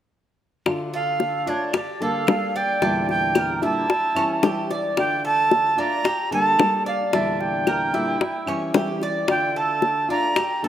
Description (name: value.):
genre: latin, Cuban son and guajira.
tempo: 111 BPM.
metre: 4/4.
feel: straight.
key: D harmonic minor.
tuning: A4 = 440 Hz.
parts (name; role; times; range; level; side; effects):
nylon-string guitar; accompaniment; 0.7-10.7 s; E2 to A4; -27 LUFS; left 1 dB; none.
bongos; percussion; 0.7-10.6 s; none; -23 LUFS; left 4 dB; none.
claves; percussion; 0.7-10.6 s; none; -35 LUFS; equal; none.
jazz flute; melody; 0.9-10.7 s; C#5 to Bb5; -22 LUFS; right 2 dB; none.
Cuban tres; arpeggios; 0.9-10.7 s; C#4 to D5; -27 LUFS; right 2 dB; none.
room: moderate lush hall reverb, RT60 2.8 s.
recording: rough home demo mix.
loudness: -19 LUFS.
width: side -10 dB against mid.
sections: 0.7-10.7 A section.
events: none.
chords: 0.7 Dm; 1.7 Gmadd9; 2.8 Em7b5; 3.9 A7; 5.0 Dm; 6.1 Gmadd9; 7.1 Em7b5; 8.2 Em6; 9.3 Dm.